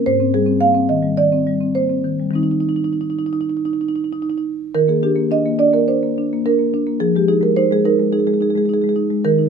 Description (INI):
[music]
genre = classical, contemporary piece for solo marimba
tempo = 99-108 BPM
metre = 4/4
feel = rubato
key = Eb major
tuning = A4 = 440 Hz
[part]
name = marimba with soft mallets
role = solo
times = 0.0-9.5 s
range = Ab2 to F5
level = -15 LUFS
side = right 1 dB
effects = none
[sound]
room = moderate studio reverb, RT60 0.6 s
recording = none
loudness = -15 LUFS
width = side -6 dB against mid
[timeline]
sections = 0.0-4.8 A section; 4.8-9.5 A section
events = none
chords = 0.1 Abmaj7; 2.4 Eb6; 4.8 Eb5; 7.0 Fm7